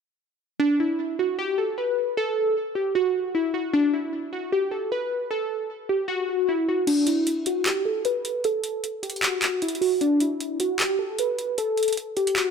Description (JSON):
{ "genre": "hip hop, trap", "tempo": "153 BPM", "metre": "4/4", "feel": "half-time", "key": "unclear", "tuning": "A4 = 437 Hz", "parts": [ { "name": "glassy digital keys", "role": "melody", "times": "0.6-12.5 s", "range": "D4 to B4", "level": "-23 LUFS", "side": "equal", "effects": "chorus, low-pass filter, digital delay" }, { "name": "trap drum kit", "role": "drums", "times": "6.9-12.5 s", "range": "crash cymbal, handclaps, hi-hat", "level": "-27 LUFS", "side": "equal", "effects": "none" } ], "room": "light reverb", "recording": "none", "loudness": "-22 LUFS", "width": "side -6 dB against mid", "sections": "0.6-6.9 A section; 6.9-12.5 B section", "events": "kick muted 6.9-12.5", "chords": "none" }